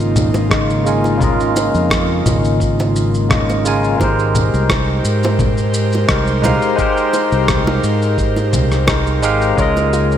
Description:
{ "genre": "sunset chillout", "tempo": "86 BPM", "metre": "4/4", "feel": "straight", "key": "Ab major", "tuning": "A4 = 440 Hz", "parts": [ { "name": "barky tine electric piano", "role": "accompaniment", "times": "0.0-10.2 s", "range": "Db3 to Ab5", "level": "-18 LUFS", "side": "equal", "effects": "auto-pan, low-pass filter, digital delay" }, { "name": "airy breathy pad", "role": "sustained chords", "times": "0.0-10.2 s", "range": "Db3 to C5", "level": "-22 LUFS", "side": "equal", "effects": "chorus" }, { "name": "fingered electric bass", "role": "bass", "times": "0.0-10.2 s", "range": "Ab1 to Ab2", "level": "-18 LUFS", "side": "equal", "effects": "none" }, { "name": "electronic shaker, congas and rim click", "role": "drums", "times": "0.0-10.2 s", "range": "none", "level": "-21 LUFS", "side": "left 1 dB", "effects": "none" }, { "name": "bongos", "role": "percussion", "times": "0.3-9.9 s", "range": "none", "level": "-26 LUFS", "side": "right 2 dB", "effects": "none" }, { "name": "electronic kick drum", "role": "drums", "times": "0.5-9.7 s", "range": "none", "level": "-21 LUFS", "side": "equal", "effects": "none" }, { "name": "soft round pluck", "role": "arpeggios", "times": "9.6-10.1 s", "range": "F4 to Db5", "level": "-24 LUFS", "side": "left 2 dB", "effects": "chorus, digital delay" } ], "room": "moderate lush hall reverb, RT60 2.7 s", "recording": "bright 1980s-style digital production", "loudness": "-13 LUFS", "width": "side -10 dB against mid", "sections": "0.0-10.2 A section", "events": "filter sweep on tine electric piano 0.0-10.2", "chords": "0.0 Db69; 4.0 Abmaj9; 9.6 Db69", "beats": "0.51 | 1.21 1.91 2.60 3.30 | 4.00 4.70 5.39 6.09 | 6.79 7.49 8.19 8.88 | 9.58" }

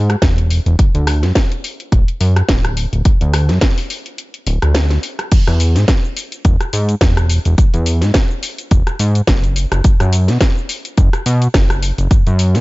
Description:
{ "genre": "nu-disco, nu disco", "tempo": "106 BPM", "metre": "4/4", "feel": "swing 56% on 16ths", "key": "unclear", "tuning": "A4 = 441 Hz", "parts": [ { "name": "fat analog bass", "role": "bass", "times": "0.0-12.6 s", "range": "D1 to B2", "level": "-14 LUFS", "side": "equal", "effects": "none" }, { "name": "house drum kit", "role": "drums", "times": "0.1-12.6 s", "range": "crash cymbal, hi-hat, rim click, shaker, snare drum", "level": "-20 LUFS", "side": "equal", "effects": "none" }, { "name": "electronic kick drum", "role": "drums", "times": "0.2-12.2 s", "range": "none", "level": "-13 LUFS", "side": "equal", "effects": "none" } ], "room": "little or no reverb", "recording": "nothing above 7.7 kHz", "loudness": "-12 LUFS", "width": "side -21 dB against mid", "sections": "0.0-5.3 A section; 5.3-12.6 B section", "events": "break 4.2-5.3; drop 5.3-12.6", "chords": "none", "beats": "0.22 | 0.79 1.36 1.92 2.49 | 3.05 3.62 4.19 4.75 | 5.32 5.88 6.45 7.02 | 7.58 8.15 8.71 9.28 | 9.85 10.41 10.98 11.54 | 12.11" }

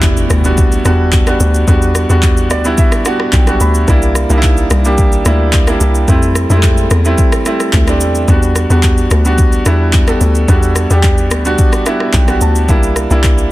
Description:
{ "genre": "amapiano", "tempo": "109 BPM", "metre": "4/4", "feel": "straight", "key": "E minor", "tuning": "A4 = 442 Hz", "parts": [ { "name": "clear grand piano", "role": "accompaniment", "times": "0.0-13.5 s", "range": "G3 to B5", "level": "-14 LUFS", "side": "right 1 dB", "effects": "none" }, { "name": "hollow log drum bass", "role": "bass", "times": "0.0-13.5 s", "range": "B1 to F2", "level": "-12 LUFS", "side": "equal", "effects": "none" }, { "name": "afro-pop drum kit", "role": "drums", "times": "0.0-13.5 s", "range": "handclaps, kick drum, rim click, shaker", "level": "-13 LUFS", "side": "equal", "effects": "none" }, { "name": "impact", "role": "sound effects", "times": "0.0-1.7 s", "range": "none", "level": "-24 LUFS", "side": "equal", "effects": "none" } ], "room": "little or no reverb", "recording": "dense, heavily limited modern master", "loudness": "-9 LUFS", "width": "side -17 dB against mid", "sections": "0.0-13.5 A section", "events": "impact 0.0-1.7; grand piano fill 2.2-3.9, 11.6-12.7", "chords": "0.0 Em9; 3.9 C9; 6.1 Fmaj7; 8.3 Em9; 12.7 C9", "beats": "0.03 0.58 1.13 | 1.68 2.23 2.78 3.33 | 3.88 4.43 4.98 5.53 | 6.08 6.63 7.18 7.73 | 8.28 8.83 9.38 9.93 | 10.48 11.03 11.59 12.13 | 12.69 13.24" }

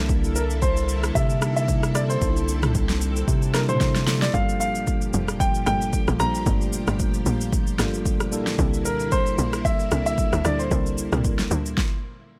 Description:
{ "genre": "amapiano", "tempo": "113 BPM", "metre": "4/4", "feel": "swing 55% on 16ths", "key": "unclear", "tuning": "A4 = 442 Hz", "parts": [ { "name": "mellow tine electric piano", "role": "accompaniment", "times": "0.0-11.8 s", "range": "G3 to C5", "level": "-31 LUFS", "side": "equal", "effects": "none" }, { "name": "string machine, violins", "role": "sustained chords", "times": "0.0-11.7 s", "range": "Bb2 to A4", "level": "-35 LUFS", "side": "equal", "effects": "ensemble chorus, sidechain pumping" }, { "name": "round analog bass", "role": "bass", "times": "0.0-4.3 s", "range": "C2 to C3", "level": "-26 LUFS", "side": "equal", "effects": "none" }, { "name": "deep house drum kit", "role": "drums", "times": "0.1-11.9 s", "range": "kick drum, rim click, shaker, snare drum, toms", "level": "-27 LUFS", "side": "equal", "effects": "none" }, { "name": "warm grand piano", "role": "melody", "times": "0.4-12.1 s", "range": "Bb4 to Bb5", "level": "-30 LUFS", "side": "equal", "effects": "delay" }, { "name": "tight log drum bass", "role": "bass", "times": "4.3-11.8 s", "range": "F1 to D2", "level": "-29 LUFS", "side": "equal", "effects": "none" } ], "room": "little or no reverb", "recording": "none", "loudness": "-23 LUFS", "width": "mono", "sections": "0.0-12.4 A section", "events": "drum fill 3.8-4.3; stop 11.8-12.4", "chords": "0.0 C13; 4.3 Gm7; 8.3 C13", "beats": "| 0.09 0.62 1.16 1.69 | 2.22 2.75 3.28 3.81 | 4.34 4.87 5.40 5.93 | 6.46 7.00 7.53 8.06 | 8.59 9.12 9.65 10.18 | 10.71 11.24 11.78" }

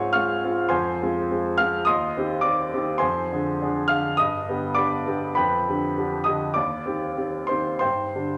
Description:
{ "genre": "classical, romantic character piece for solo piano", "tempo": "88-106 BPM", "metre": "4/4", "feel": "rubato", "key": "C minor", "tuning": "A4 = 440 Hz", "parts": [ { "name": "warm grand piano", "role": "solo", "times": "0.0-8.4 s", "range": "Db2 to F6", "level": "-24 LUFS", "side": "equal", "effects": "none" } ], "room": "wet recital hall reverb, RT60 1.5 s", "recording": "none", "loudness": "-24 LUFS", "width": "mono", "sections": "0.0-8.4 A section", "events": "none", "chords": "0.0 Dbmaj7; 0.7 Fm; 1.9 Cm/Eb; 3.0 Dm7b5/F; 4.2 G; 5.4 G7/F; 6.6 Cm/Eb; 7.8 G5", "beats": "0.14 | 0.72 1.30 1.88 2.45 | 3.03 3.60 4.18 4.77 | 5.37 5.96 6.57 7.18 | 7.84" }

